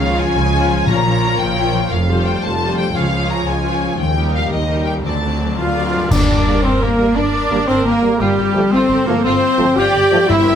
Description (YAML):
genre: cinematic, heroic adventure film score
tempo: 115 BPM (dotted quarters)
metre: 12/8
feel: straight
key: G dorian from 6.1 s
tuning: A4 = 441 Hz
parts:
  - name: rich studio violin section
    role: melody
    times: 0.0-10.5 s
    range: D4 to Bb5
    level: -22 LUFS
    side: left 3 dB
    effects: none
  - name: clear symphonic violin section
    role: second line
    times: 0.0-10.6 s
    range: D4 to G5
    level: -25 LUFS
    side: left 1 dB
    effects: none
  - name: rich symphonic viola section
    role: accompaniment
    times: 0.0-10.6 s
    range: F3 to D5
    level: -23 LUFS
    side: right 1 dB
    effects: none
  - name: concert harp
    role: arpeggios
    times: 0.0-10.6 s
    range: G2 to D5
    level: -25 LUFS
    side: left 9 dB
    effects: none
  - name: rich symphonic cello section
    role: bass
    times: 0.0-10.6 s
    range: Db2 to G4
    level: -22 LUFS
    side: right 3 dB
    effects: none
  - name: rich symphonic double bass section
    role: bass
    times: 0.0-10.5 s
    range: F1 to Eb2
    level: -22 LUFS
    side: right 3 dB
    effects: none
  - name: timpani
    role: percussion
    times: 0.9-1.4, 6.1-6.6, 10.3-10.6 s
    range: G2 to Bb2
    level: -21 LUFS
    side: left 1 dB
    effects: none
  - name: cymbal swell, clash cymbals and concert bass drum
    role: percussion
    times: 1.9-6.8 s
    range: none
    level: -24 LUFS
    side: equal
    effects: none
  - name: mellow cor anglais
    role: second line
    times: 5.6-10.6 s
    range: G3 to G4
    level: -24 LUFS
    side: right 3 dB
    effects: none
  - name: mellow hollow silver concert flute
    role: second line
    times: 5.6-10.6 s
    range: G5 to G6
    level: -24 LUFS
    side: left 2 dB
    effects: none
  - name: mellow French horn section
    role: sustained chords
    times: 5.6-10.6 s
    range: G3 to G4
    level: -17 LUFS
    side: left 2 dB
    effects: none
  - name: dark trombone section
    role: sustained chords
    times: 6.5-10.2 s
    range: F3 to Bb3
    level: -24 LUFS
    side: right 4 dB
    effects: none
room: moderate scoring stage reverb, RT60 1.5 s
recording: close, detailed microphones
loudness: -13 LUFS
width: side -8 dB against mid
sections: 0.0-6.1 A section; 6.1-10.6 B section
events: band accent 6.1-6.5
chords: 0.0 Db; 0.9 Bbm; 1.9 Fadd9; 2.9 Db; 4.0 Eb; 5.0 D7; 6.1 Gm; 8.2 Fadd9/G